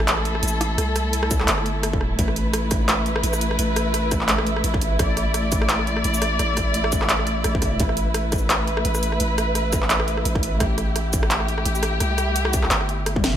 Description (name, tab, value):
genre	half-time drum and bass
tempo	171 BPM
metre	4/4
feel	swing 55% on 16ths, half-time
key	A minor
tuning	A4 = 440 Hz
part	dark chamber string section	sustained chords	0.0-13.4 s	A3 to D5	-25 LUFS	left 1 dB	vintage 12-bit sampler grit, sidechain pumping
part	long sustained 808-style bass	bass	0.0-13.4 s	G1 to C2	-24 LUFS	equal	none
part	drum and bass drum kit	drums	0.0-13.4 s	handclaps, hi-hat, rim click, shaker, snare drum, toms	-24 LUFS	equal	overdrive, studio reverb
part	electronic kick drum	drums	1.3-13.2 s	none	-25 LUFS	equal	distortion, studio reverb
part	flickering grainy texture	texture	2.6-13.4 s	E5	-31 LUFS	right 3 dB	built-in reverb
room	light reverb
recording	none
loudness	-19 LUFS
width	side -10 dB against mid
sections	0.0-13.4 A section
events	drum fill 13.2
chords	0.0 Asus2